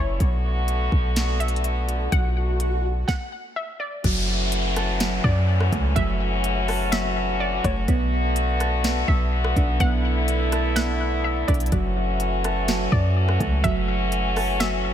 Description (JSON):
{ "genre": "hip hop, atmospheric cloud-rap", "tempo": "125 BPM", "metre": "4/4", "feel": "half-time", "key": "F# minor", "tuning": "A4 = 437 Hz", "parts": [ { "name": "warbly dusty pluck", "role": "melody", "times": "0.0-14.9 s", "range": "C#5 to F#5", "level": "-31 LUFS", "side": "left 1 dB", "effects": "chorus, low-pass filter, ping-pong delay" }, { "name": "muted French horn section", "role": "sustained chords", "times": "0.0-14.9 s", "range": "D3 to F#4", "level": "-26 LUFS", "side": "left 2 dB", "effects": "sidechain pumping" }, { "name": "clean 808-style bass", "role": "bass", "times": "0.0-14.9 s", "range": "F#1 to F#2", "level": "-23 LUFS", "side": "equal", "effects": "none" }, { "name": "smooth R&B drum kit", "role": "drums", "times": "0.2-14.7 s", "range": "crash cymbal, hi-hat, kick drum, rim click, snare drum", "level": "-26 LUFS", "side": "equal", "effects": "overdrive" }, { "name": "swell and downlifter", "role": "sound effects", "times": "1.5-7.9 s", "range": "none", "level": "-32 LUFS", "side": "equal", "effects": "none" }, { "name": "soft electric-piano-like synth keys", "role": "arpeggios", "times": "4.0-14.9 s", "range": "F#3 to A5", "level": "-29 LUFS", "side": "right 4 dB", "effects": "chorus, low-pass filter, ping-pong delay" } ], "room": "light reverb", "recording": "none", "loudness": "-20 LUFS", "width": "side -10 dB against mid", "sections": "0.0-4.0 A section; 4.0-14.9 B section", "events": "swell 1.5-4.0; stop 3.1-4.0", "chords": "0.2 Bm7; 4.0 F#m7; 7.9 Bm7; 11.7 F#m7" }